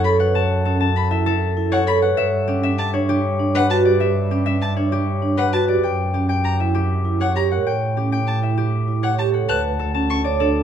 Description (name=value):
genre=classical, minimalist pattern music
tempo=197 BPM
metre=6/4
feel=straight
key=unclear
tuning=A4 = 440 Hz
part: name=concert harp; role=melody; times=0.0-10.6 s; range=G4 to A5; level=-22 LUFS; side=left 5 dB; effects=none
part: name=rich violin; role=arpeggios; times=0.0-10.2 s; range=F#5 to F#6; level=-24 LUFS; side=left 4 dB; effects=none
part: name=vibraphone with soft mallets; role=arpeggios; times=0.0-10.6 s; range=C#4 to C#5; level=-22 LUFS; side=right 4 dB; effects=none
part: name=rich double bass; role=bass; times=0.0-10.6 s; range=D2 to A2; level=-22 LUFS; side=right 2 dB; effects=none
room=light reverb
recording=dark, warm production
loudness=-17 LUFS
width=side -9 dB against mid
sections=0.0-9.5 A section; 9.5-10.6 B section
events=none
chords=0.0 F#m7; 2.2 Gmaj9#11; 5.8 F#7b9; 7.7 A7; 9.5 D6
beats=0.05 | 0.35 0.66 0.96 1.26 1.57 1.87 | 2.18 2.48 2.79 3.09 3.40 3.70 | 4.00 4.31 4.62 4.92 5.22 5.53 | 5.83 6.14 6.44 6.75 7.05 7.36 | 7.66 7.96 8.27 8.57 8.88 9.18 | 9.49 9.79 10.10 10.40